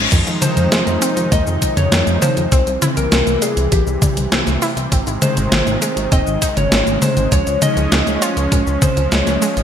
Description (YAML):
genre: synthwave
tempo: 100 BPM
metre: 4/4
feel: straight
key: F minor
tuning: A4 = 443 Hz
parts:
  - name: brassy analog pad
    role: sustained chords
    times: 0.0-9.6 s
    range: C3 to Eb4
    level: -24 LUFS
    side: equal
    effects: chorus, sidechain pumping
  - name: wide unison pluck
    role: arpeggios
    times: 0.0-9.6 s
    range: Eb3 to Ab4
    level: -25 LUFS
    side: right 2 dB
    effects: ping-pong delay
  - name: chorused synth bass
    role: bass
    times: 0.0-9.6 s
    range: Eb1 to F2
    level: -19 LUFS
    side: equal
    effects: none
  - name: clean 12-bit digital drum machine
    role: drums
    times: 0.1-9.6 s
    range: cabasa, crash cymbal, hi-hat, snare drum, toms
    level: -18 LUFS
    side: equal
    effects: gated reverb
  - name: electronic kick drum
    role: drums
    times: 0.1-8.9 s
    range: none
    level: -17 LUFS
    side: equal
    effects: none
  - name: soft octave-layered synth lead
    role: melody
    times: 0.4-9.6 s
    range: G4 to Eb5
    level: -22 LUFS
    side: left 2 dB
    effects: chorus, phaser, digital delay
  - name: soft synth bell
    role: second line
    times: 0.4-9.5 s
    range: G4 to Eb5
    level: -25 LUFS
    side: left 1 dB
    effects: chorus, ping-pong delay
room: moderate lush hall reverb, RT60 1.7 s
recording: bright 1980s-style digital production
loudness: -13 LUFS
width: side -8 dB against mid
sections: 0.0-9.6 A section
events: none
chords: 0.1 Fm7; 2.5 C; 4.9 Ab; 7.3 Db